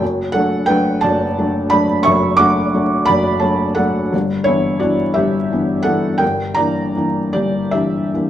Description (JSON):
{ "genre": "classical, romantic nocturne for solo piano", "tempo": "49-60 BPM (dotted quarters)", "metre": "12/8", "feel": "rubato", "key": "D major", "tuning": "A4 = 439 Hz", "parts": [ { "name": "felt-muted upright piano", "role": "solo", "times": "0.0-8.3 s", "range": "F#1 to D6", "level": "-14 LUFS", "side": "equal", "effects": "none" } ], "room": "light reverb", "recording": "close, detailed microphones, vinyl crackle", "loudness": "-14 LUFS", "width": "side -11 dB against mid", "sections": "0.0-8.3 A section", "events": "none", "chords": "0.0 D/F#; 4.1 Em7/G; 6.2 Em7b5/G" }